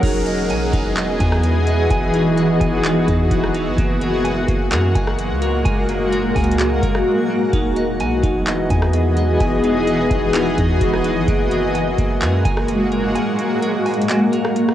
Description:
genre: hip hop, atmospheric cloud-rap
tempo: 128 BPM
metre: 4/4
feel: half-time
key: E lydian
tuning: A4 = 440 Hz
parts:
  - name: granular cloud pad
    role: sustained chords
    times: 0.0-14.7 s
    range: E3 to D#5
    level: -18 LUFS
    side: left 1 dB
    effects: built-in reverb, sidechain pumping
  - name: clean electric guitar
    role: arpeggios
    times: 0.0-14.7 s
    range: A#3 to G#5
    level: -27 LUFS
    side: right 3 dB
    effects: tape echo
  - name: warm 808-style bass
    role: bass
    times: 0.0-13.2 s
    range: E1 to F#2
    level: -21 LUFS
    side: equal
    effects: none
  - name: booming analog drum machine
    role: drums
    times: 0.0-14.7 s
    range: handclaps, hi-hat, kick drum, rim click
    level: -22 LUFS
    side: equal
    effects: cassette tape
  - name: downlifter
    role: sound effects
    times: 0.0-3.8 s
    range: none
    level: -35 LUFS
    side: equal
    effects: none
  - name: backwards swelling texture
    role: texture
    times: 0.0-14.7 s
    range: E4 to G#5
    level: -34 LUFS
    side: equal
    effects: none
room: light reverb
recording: home recording on cassette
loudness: -15 LUFS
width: side -12 dB against mid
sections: 0.0-14.7 A section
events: drums muted 7.1-7.5; kick muted 13.2-14.7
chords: 0.0 Emaj7; 3.8 F#add9; 7.5 Emaj7; 11.3 F#add9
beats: | 0.03 0.50 0.97 1.44 | 1.91 2.38 2.84 3.31 | 3.78 4.25 4.72 5.19 | 5.66 6.12 6.59 7.06 | 7.53 8.00 8.47 8.94 | 9.41 9.88 10.34 10.81 | 11.28 11.75 12.22 12.69 | 13.16 13.62 14.09 14.56

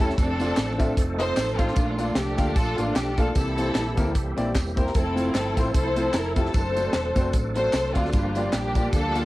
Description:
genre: uptempo gospel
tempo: 151 BPM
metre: 4/4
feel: swing 56% on 8ths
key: F major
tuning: A4 = 440 Hz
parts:
  - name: dark studio string section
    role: melody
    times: 0.0-9.2 s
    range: A3 to C5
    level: -27 LUFS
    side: equal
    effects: plate reverb, analog delay
  - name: warm grand piano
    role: accompaniment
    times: 0.0-9.2 s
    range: G2 to F5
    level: -29 LUFS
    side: left 1 dB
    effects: cassette tape, plate reverb
  - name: bright tonewheel organ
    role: sustained chords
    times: 0.0-9.2 s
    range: E3 to A4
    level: -32 LUFS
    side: right 2 dB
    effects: slow rotary speaker, chorus vibrato, cassette tape, plate reverb
  - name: hollow-body short-scale fingered electric bass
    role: bass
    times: 0.0-9.2 s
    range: E1 to D2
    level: -30 LUFS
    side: equal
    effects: none
  - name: tight funk drum kit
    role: drums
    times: 0.0-9.2 s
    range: hi-hat, kick drum, snare drum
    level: -24 LUFS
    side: equal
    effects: cassette tape
  - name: tambourine and handclaps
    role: percussion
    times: 0.0-9.2 s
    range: none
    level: -40 LUFS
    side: equal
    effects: none
room: light reverb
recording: home recording on cassette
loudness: -21 LUFS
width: side -18 dB against mid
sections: 0.0-9.2 A section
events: none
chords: 0.2 Dm7/F; 1.0 F7; 1.8 Bbmaj7; 3.4 C7; 4.9 Fmaj7; 6.5 D7; 8.1 Gm7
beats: | 0.17 0.57 0.97 1.37 | 1.77 2.16 2.56 2.96 | 3.36 3.75 4.15 4.55 | 4.95 5.35 5.75 6.14 | 6.54 6.94 7.34 7.74 | 8.13 8.53 8.93

